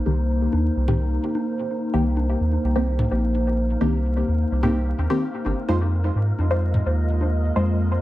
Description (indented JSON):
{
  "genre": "dub techno",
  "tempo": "128 BPM",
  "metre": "4/4",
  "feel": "straight",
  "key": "C minor",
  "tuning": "A4 = 439 Hz",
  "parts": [
    { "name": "dark analog pad", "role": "sustained chords", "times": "0.0-8.0 s", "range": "Ab3 to Eb5", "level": "-27 LUFS", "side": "left 1 dB", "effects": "chorus, phaser" },
    { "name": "filtered dub chord stab", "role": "stabs", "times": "0.0-8.0 s", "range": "Eb3 to C5", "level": "-26 LUFS", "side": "left 1 dB", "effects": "phaser, dub echo" },
    { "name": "wind-like tuned noise texture", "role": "texture", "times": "0.0-8.0 s", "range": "Bb3 to Bb4", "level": "-36 LUFS", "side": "right 1 dB", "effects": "built-in reverb" },
    { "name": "soft dub sub bass", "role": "bass", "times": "0.1-8.0 s", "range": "G1 to Ab2", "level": "-22 LUFS", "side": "equal", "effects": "none" },
    { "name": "electronic congas and toms", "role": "percussion", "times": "0.5-7.3 s", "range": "none", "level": "-29 LUFS", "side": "equal", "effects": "overdrive, dub echo" }
  ],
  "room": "light reverb",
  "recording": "echo-heavy mix, vinyl crackle",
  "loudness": "-20 LUFS",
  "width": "side -15 dB against mid",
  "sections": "0.0-8.0 A section",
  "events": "filter sweep on synth stab 0.0-8.0",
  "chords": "0.0 Cm7; 5.7 Fm7",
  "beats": "| 0.06 0.53 1.00 1.47 | 1.94 2.40 2.87 3.34 | 3.81 4.28 4.75 5.22 | 5.68 6.15 6.62 7.09 | 7.56"
}